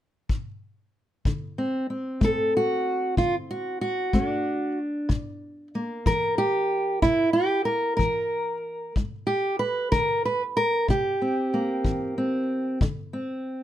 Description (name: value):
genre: acoustic country blues, solo or duo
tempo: 62 BPM (dotted quarters)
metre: 12/8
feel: straight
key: unclear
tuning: A4 = 439 Hz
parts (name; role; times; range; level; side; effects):
- kick drum; drums; 0.3-13.0 s; none; -27 LUFS; left 1 dB; none
- fingerpicked steel-string acoustic guitar; melody; 1.3-13.6 s; G2 to B4; -24 LUFS; equal; none
room: light reverb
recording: close, detailed microphones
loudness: -23 LUFS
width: side -12 dB against mid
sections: 0.0-1.3 A section; 1.3-13.6 B section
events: none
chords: 0.0 N.C.; 1.3 D7; 5.1 C7; 9.0 G5; 10.9 C7; 12.8 D7(no3)